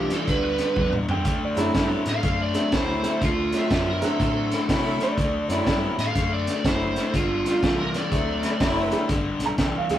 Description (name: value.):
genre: electric blues shuffle.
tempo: 122 BPM.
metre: 4/4.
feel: swing 64% on 8ths.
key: unclear.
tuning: A4 = 440 Hz.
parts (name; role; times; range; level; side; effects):
lead guitar through a small cranked amp; melody; 0.0-8.9 s; F4 to F5; -27 LUFS; right 2 dB; overdrive.
warm upright piano; accompaniment; 0.0-10.0 s; F#3 to Bb5; -28 LUFS; right 2 dB; none.
biting overdriven guitar; riff; 0.0-10.0 s; G2 to B3; -28 LUFS; left 3 dB; none.
vintage muted fingered electric bass; bass; 0.0-10.0 s; F#1 to C3; -32 LUFS; equal; none.
crunchy breakbeat drum kit; drums; 0.1-10.0 s; hi-hat, kick drum, snare drum, toms; -26 LUFS; equal; none.
electric slide guitar; second line; 1.1-2.0, 5.0-5.8 s; A4 to G5; -29 LUFS; right 3 dB; none.
clear horn section; stabs; 1.6-9.1 s; F#3 to E5; -28 LUFS; left 1 dB; none.
room: moderate studio reverb, RT60 0.6 s.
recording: rough rehearsal-room recording.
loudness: -21 LUFS.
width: side -11 dB against mid.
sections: 0.0-9.1 A section.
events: drum fill 0.8-1.3.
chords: 0.0 G9; 1.3 D9; 7.1 G9; 8.1 D9; 9.1 G7.